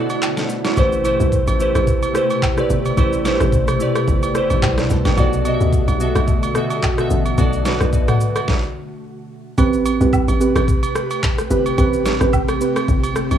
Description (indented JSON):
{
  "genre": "amapiano",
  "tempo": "109 BPM",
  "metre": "4/4",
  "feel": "swing 55% on 16ths",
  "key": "A dorian",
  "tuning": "A4 = 439 Hz",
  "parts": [
    { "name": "glassy digital keys", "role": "accompaniment", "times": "0.0-8.6 s", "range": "B2 to B5", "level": "-20 LUFS", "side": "equal", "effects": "chorus" },
    { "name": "ethereal airy pad", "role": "sustained chords", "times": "0.0-13.4 s", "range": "B2 to B4", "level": "-24 LUFS", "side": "equal", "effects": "ensemble chorus, built-in reverb" },
    { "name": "smooth R&B drum kit", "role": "drums", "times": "0.1-13.4 s", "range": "handclaps, kick drum, rim click, shaker, snare drum, toms", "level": "-20 LUFS", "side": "equal", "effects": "none" },
    { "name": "agogo bells and woodblock", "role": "percussion", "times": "0.1-13.4 s", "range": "none", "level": "-27 LUFS", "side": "right 7 dB", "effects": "none" },
    { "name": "hollow log drum bass", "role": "bass", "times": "0.8-13.4 s", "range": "G1 to D2", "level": "-20 LUFS", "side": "equal", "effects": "none" },
    { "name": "deep mellow chord stab", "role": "stabs", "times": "9.6-12.7 s", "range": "C4 to B4", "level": "-19 LUFS", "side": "right 4 dB", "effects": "chorus, tape echo" }
  ],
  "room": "light reverb, digital ambience",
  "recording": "home recording on cassette, small room ambience",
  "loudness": "-15 LUFS",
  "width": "side -9 dB against mid",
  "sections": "0.0-9.6 A section; 9.6-13.4 B section",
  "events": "break 0.0-0.8; stop 8.5-9.6; drop 9.6-13.4",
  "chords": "0.0 Bm7; 0.8 Am9; 5.2 Bm7; 9.6 Am9",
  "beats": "0.22 | 0.77 1.32 1.88 2.42 | 2.98 3.53 4.08 4.63 | 5.18 5.73 6.28 6.83 | 7.38 7.93 8.48 9.03 | 9.58 10.13 10.68 11.23 | 11.78 12.33 12.88"
}